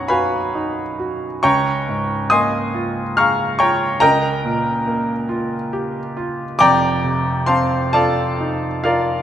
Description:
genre	classical, impressionist solo piano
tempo	41-48 BPM (dotted quarters)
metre	6/8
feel	rubato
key	unclear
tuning	A4 = 439 Hz
part	clear grand piano	solo	0.0-9.2 s	F1 to F6	-16 LUFS	equal	none
room	moderate scoring stage reverb, RT60 1.9 s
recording	none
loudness	-16 LUFS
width	side -10 dB against mid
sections	0.0-9.2 A section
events	none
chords	0.0 Badd9; 1.4 Db69; 4.0 Ebadd9/Db; 6.6 F9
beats	0.07 | 1.43 2.74 | 4.02 5.29 | 6.59 7.92

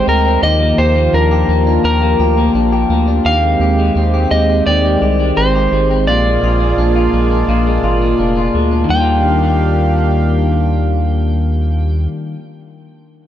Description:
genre	dream pop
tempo	85 BPM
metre	4/4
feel	straight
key	Eb major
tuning	A4 = 440 Hz
part	electric slide guitar	melody	0.0-12.1 s	Bb4 to G5	-18 LUFS	equal	tape echo
part	warm analog pad	sustained chords	0.0-12.1 s	Eb3 to F5	-19 LUFS	right 2 dB	chorus
part	electric guitar at the edge of break-up	arpeggios	0.0-12.5 s	Bb2 to G4	-17 LUFS	left 3 dB	wide subtle chorus, tape echo
part	round analog bass	bass	0.0-12.1 s	F1 to Eb2	-15 LUFS	equal	none
room	light reverb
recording	dark, warm production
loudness	-11 LUFS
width	side -11 dB against mid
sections	0.0-8.9 A section; 8.9-11.7 B section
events	none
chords	0.4 Ebmaj9; 3.2 Abmaj7/Eb; 6.1 Bb7; 8.9 Ebmaj9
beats	| 0.42 1.12 1.83 2.54 | 3.24 3.95 4.66 5.36 | 6.07 6.77 7.48 8.18 | 8.89 9.60 10.30 11.01

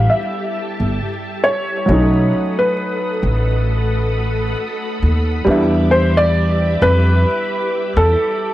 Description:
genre	lo-fi hip hop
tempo	67 BPM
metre	4/4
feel	swing 57% on 16ths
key	unclear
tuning	A4 = 440 Hz
part	felt-muted upright piano	melody	0.0-8.5 s	A4 to E5	-18 LUFS	equal	low-pass filter, plate reverb, analog delay
part	warm upright piano	accompaniment	0.0-8.5 s	F#3 to E4	-20 LUFS	equal	cassette tape, low-pass filter, plate reverb
part	string machine, cellos	sustained chords	0.0-8.5 s	G4 to D#6	-24 LUFS	equal	ensemble chorus, low-pass filter, plate reverb
part	upright bass	bass	0.0-8.1 s	G1 to F2	-16 LUFS	equal	tube saturation
room	moderate small room reverb, RT60 0.5 s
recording	dry, gritty hardware recording, vinyl crackle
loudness	-14 LUFS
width	side -15 dB against mid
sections	0.0-8.5 A section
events	none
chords	0.0 Em7; 1.9 B7; 5.5 Em7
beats	0.09 0.98 | 1.88 2.78 3.67 4.57 | 5.46 6.36 7.25 8.15

